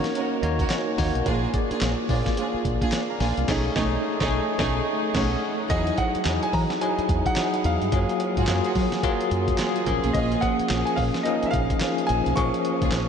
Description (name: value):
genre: R&B, new jack swing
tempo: 108 BPM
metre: 4/4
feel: swing 61% on 16ths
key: unclear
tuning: A4 = 439 Hz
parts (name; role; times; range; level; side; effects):
- bell-like tine electric piano; accompaniment; 0.0-13.1 s; F3 to Bb5; -25 LUFS; left 1 dB; medium stereo tremolo
- warm studio string section; stabs; 0.0-12.9 s; A3 to Bb4; -31 LUFS; right 3 dB; ping-pong delay
- dusty soul sampler-style drum kit; drums; 0.0-13.1 s; crash cymbal, handclaps, hi-hat, kick drum, snare drum; -28 LUFS; equal; none
- cowbell; percussion; 0.1-13.1 s; none; -39 LUFS; right 2 dB; none
- deep dub fingered electric bass; bass; 0.4-13.0 s; Bb1 to Gb3; -27 LUFS; equal; none
- clear concert grand piano; melody; 5.7-13.1 s; D#5 to Db6; -28 LUFS; equal; none
room: wet huge ambient reverb, RT60 7.3 s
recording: dreamy mix soaked in reverb, nothing above 10.3 kHz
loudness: -21 LUFS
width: side -7 dB against mid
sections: 0.0-5.7 A section; 5.7-13.1 B section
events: tine electric piano fill 0.1-1.3; band accent 3.5-5.7; silent gap 5.1-5.7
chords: 0.0 Ebm7; 1.3 Bb7; 3.5 B13; 5.7 Emaj9; 7.9 Gbmaj9; 9.9 Bbm7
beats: 0.15 0.70 | 1.26 1.82 2.37 2.93 | 3.48 4.04 4.59 5.15 | 5.71 6.26 6.82 7.37 | 7.93 8.48 9.04 9.59 | 10.15 10.71 11.26 11.82 | 12.37 12.93